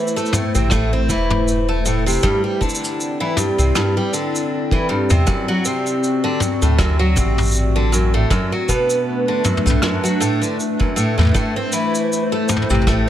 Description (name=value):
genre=folktronica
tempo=79 BPM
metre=4/4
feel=swing 56% on 16ths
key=A dorian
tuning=A4 = 440 Hz
part: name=warbly tape-like pad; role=sustained chords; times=0.0-13.1 s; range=A3 to D5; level=-23 LUFS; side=left 2 dB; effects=chorus, built-in reverb
part: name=picked twelve-string acoustic guitar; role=arpeggios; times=0.0-13.1 s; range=F#2 to C4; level=-19 LUFS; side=right 1 dB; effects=tape echo
part: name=vintage brush drum kit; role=drums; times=0.1-13.0 s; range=cabasa, rim click, toms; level=-23 LUFS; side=left 1 dB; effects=none
part: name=round analog bass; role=bass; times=0.6-13.1 s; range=E1 to E2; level=-18 LUFS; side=equal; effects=tube saturation
part: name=kick drum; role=drums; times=0.7-13.0 s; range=none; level=-20 LUFS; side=equal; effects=none
room=light reverb, studio ambience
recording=none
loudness=-16 LUFS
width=side -11 dB against mid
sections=0.0-13.1 A section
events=none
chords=0.0 Am; 2.2 Cadd9; 5.3 D7; 8.3 Bm7; 11.3 Am